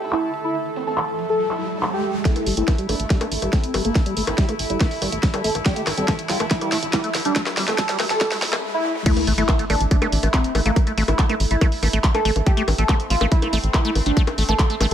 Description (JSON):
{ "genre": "psychedelic trance", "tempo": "141 BPM", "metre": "4/4", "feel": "straight", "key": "A minor", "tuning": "A4 = 436 Hz", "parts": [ { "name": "formant-sweep wobble bass", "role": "second line", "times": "0.0-8.6 s", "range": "A3 to E4", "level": "-37 LUFS", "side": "right 3 dB", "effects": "chorus, sidechain pumping, high-pass filter, ping-pong delay" }, { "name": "bubbling stepped-filter texture", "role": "sustained chords", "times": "0.0-14.9 s", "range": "A3 to A4", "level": "-30 LUFS", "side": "right 2 dB", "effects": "chorus, built-in reverb, sidechain pumping" }, { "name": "drum and bass drum kit", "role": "drums", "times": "0.0-14.9 s", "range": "bongos, crash cymbal, handclaps, hi-hat, snare drum, toms", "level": "-25 LUFS", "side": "left 1 dB", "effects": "high-pass filter on hats, low-pass filter on hats, small room reverb, high-pass filter on snare, low-pass filter on snare, high-pass filter on perc, low-pass filter on perc, high-pass filter on toms, low-pass filter on toms, high-pass filter on cymbals, low-pass filter on cymbals" }, { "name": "riser, swell and sub drop", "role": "sound effects", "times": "0.3-10.8 s", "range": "none", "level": "-31 LUFS", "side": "equal", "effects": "none" }, { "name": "wide unison lead", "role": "melody", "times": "0.1-14.9 s", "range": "Bb3 to A4", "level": "-25 LUFS", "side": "equal", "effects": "phaser, sidechain pumping, ping-pong delay" }, { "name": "liquid acid bass", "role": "riff", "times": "2.3-14.9 s", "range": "G3 to Bb3", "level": "-27 LUFS", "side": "moving between left 4 dB and right 4 dB", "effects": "chorus, auto-pan, sidechain pumping, dub echo" }, { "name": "electronic kick drum", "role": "drums", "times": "2.3-14.7 s", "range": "none", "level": "-19 LUFS", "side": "equal", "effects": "overdrive, small room reverb" }, { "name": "tight sequencer bass", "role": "bass", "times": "2.5-14.9 s", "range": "A1", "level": "-23 LUFS", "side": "equal", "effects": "none" } ], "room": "light reverb", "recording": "high-pass filter", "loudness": "-18 LUFS", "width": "side -10 dB against mid", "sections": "0.0-2.3 A section; 2.3-9.1 B section; 9.1-14.9 C section", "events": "riser 0.3-2.3, 2.3-9.1; build-up 2.3-9.1; drum fill 2.3-8.6, 8.8; filter sweep on acid bass 2.3-9.1; filter sweep on analog synth lead 2.3-9.1; filter sweep 2.3-9.1; swell 8.2-9.1; break 8.6-9.1; drop 9.1-14.9; impact 9.1-10.8", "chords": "0.0 A5", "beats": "0.12 | 0.55 0.97 1.40 1.83 | 2.25 2.68 3.10 3.53 | 3.95 4.38 4.80 5.23 | 5.66 6.08 6.51 6.93 | 7.36 7.78 8.21 8.63 | 9.06 9.49 9.91 10.34 | 10.76 11.19 11.61 12.04 | 12.46 12.89 13.32 13.74 | 14.17 14.59" }